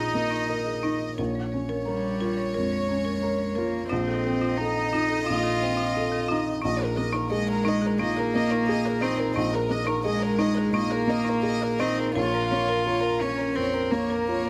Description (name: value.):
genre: neoclassical piano and strings.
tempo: 88 BPM.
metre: 4/4.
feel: rubato.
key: Bb minor.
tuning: A4 = 439 Hz.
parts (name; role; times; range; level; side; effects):
warm chamber violin section; melody; 0.0-14.5 s; Bb4 to Eb5; -32 LUFS; equal; none.
rich cello; second line; 0.0-14.5 s; G3 to F4; -30 LUFS; equal; none.
felt-muted upright piano; accompaniment; 0.0-14.5 s; Bb1 to Bb4; -30 LUFS; equal; none.
folk marimba with hard mallets; arpeggios; 0.0-14.4 s; Eb4 to Bb5; -35 LUFS; equal; none.
room: light reverb.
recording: close, detailed microphones.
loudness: -26 LUFS.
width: mono.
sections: 0.0-14.5 A section.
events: none.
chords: 0.0 Eb5/Bb; 1.2 Bbm; 3.9 F7/Bb; 6.6 Ebsus4/Bb; 12.2 Bbm.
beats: 0.50 | 1.19 1.87 2.55 3.23 | 3.91 4.59 5.27 5.95 | 6.63 7.31 7.99 8.68 | 9.35 10.04 10.74 11.44 | 12.17 12.87 13.57 14.29.